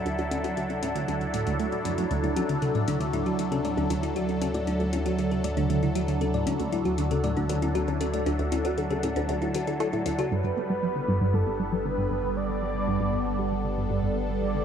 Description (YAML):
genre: ambient, sequencer-driven space music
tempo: 117 BPM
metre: 4/4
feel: straight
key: D major, G major from 10.3 s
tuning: A4 = 440 Hz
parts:
  - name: phased analog pad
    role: sustained chords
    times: 0.0-14.6 s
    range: F#3 to A4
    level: -29 LUFS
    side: right 1 dB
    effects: phaser, chorus
  - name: round analog bass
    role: bass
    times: 0.0-14.6 s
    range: G1 to D2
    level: -34 LUFS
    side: equal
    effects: none
  - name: resonant blip pluck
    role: riff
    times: 0.1-14.6 s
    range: D2 to B3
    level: -29 LUFS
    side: right 1 dB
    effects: phaser, ping-pong delay
  - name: electronic hi-hat and congas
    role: percussion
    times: 0.1-10.3 s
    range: none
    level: -38 LUFS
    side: left 5 dB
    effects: ping-pong delay
  - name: thumb-piano-like synth pluck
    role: arpeggios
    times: 2.2-10.3 s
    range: D4 to D5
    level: -32 LUFS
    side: left 3 dB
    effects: chorus, auto-pan, ping-pong delay
  - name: breathy flute-like synth lead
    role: melody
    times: 10.3-14.6 s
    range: A4 to D5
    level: -32 LUFS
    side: equal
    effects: ensemble chorus, ping-pong delay
room: moderate plate reverb, RT60 2.9 s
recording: none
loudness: -24 LUFS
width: side -8 dB against mid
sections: 0.0-10.3 A section; 10.3-14.6 B section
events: fade-in on analog synth bass 0.0-10.3; filter sweep on synth arpeggio sound 0.0-10.3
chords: 0.0 Dadd9; 10.3 Gadd9